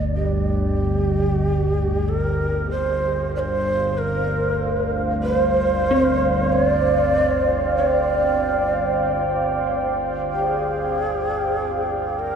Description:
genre	dark ambient drone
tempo	48 BPM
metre	4/4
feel	straight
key	G phrygian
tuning	A4 = 440 Hz
part	dark detuned synth bell	arpeggios	0.0-12.4 s	C4 to Bb4	-28 LUFS	left 1 dB	chorus, tape echo
part	analog drone	drone	0.0-12.4 s	G1 to D2	-24 LUFS	equal	lush chorus
part	breathy mellow shakuhachi	melody	0.2-12.4 s	G4 to D5	-23 LUFS	right 1 dB	tape echo
part	deep dark ambient pad	sustained chords	2.8-12.4 s	C5 to G5	-23 LUFS	right 2 dB	chorus, built-in reverb
room	wet huge ambient reverb, RT60 8.7 s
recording	dreamy mix soaked in reverb, studio ambience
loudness	-18 LUFS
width	side -7 dB against mid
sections	0.0-12.4 A section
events	fade-out 6.9-12.4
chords	0.0 G5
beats	| 0.17 1.45 2.73 4.00 | 5.26 6.52 7.78 9.03 | 10.29 11.55

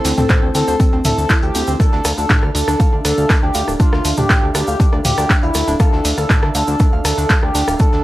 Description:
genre	melodic techno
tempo	120 BPM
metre	4/4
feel	straight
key	D minor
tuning	A4 = 439 Hz
part	expressive synth lead	melody	0.0-8.0 s	E4 to A4	-21 LUFS	equal	wide subtle chorus, sidechain pumping, analog delay
part	dark analog pad	sustained chords	0.0-8.0 s	A3 to F5	-28 LUFS	equal	none
part	woody wave-folded pluck	arpeggios	0.0-8.0 s	C4 to A5	-23 LUFS	equal	chorus, sidechain pumping, tape echo
part	fat analog bass	bass	0.0-8.0 s	D1 to D2	-20 LUFS	equal	sidechain pumping
part	punchy analog drum machine	drums	0.0-7.8 s	handclaps, hi-hat, rim click, toms	-20 LUFS	equal	sidechain pumping on hats, sidechain pumping on toms
part	warm soul drum kit	drums	0.0-8.0 s	hi-hat, snare drum	-34 LUFS	left 1 dB	none
part	egg shaker	percussion	0.1-7.9 s	none	-29 LUFS	right 3 dB	none
part	electronic kick drum	drums	0.3-7.9 s	none	-14 LUFS	equal	overdrive
room	small room ambience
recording	dry, gritty hardware recording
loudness	-13 LUFS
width	side -16 dB against mid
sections	0.0-8.0 A section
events	none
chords	0.0 Am/D; 1.8 Dm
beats	0.30 0.80 1.30 | 1.80 2.30 2.80 3.30 | 3.80 4.30 4.80 5.30 | 5.80 6.30 6.80 7.30 | 7.80

